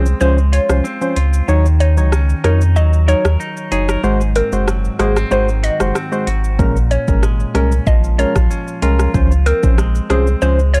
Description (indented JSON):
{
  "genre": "dancehall",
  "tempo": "94 BPM",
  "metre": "4/4",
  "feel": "straight",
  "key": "unclear",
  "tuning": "A4 = 440 Hz",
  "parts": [
    { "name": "hollow square pluck", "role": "melody", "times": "0.0-10.8 s", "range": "Ab4 to Eb5", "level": "-23 LUFS", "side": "equal", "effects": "chorus" },
    { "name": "percussive organ stab", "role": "accompaniment", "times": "0.0-10.6 s", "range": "F3 to Db5", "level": "-22 LUFS", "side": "equal", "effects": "chorus, sidechain pumping" },
    { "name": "semi-hollow electric guitar", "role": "arpeggios", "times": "0.0-10.8 s", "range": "Ab2 to Bb4", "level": "-26 LUFS", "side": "equal", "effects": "analog delay" },
    { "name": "warm sub bass", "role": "bass", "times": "0.0-10.8 s", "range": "Gb1 to F2", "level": "-16 LUFS", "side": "equal", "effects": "none" },
    { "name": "afro-pop drum kit", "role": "drums", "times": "0.1-10.8 s", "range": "hi-hat, kick drum, rim click, shaker", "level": "-21 LUFS", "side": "equal", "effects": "none" }
  ],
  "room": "little or no reverb",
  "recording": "dry, gritty hardware recording, cassette tape",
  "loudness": "-15 LUFS",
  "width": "mono",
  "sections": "0.0-10.8 A section",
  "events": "break 0.0-6.6",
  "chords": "0.0 Dbmaj7; 1.5 Ebm7; 4.0 Ab7; 6.6 Bbm7; 9.1 Dbmaj7"
}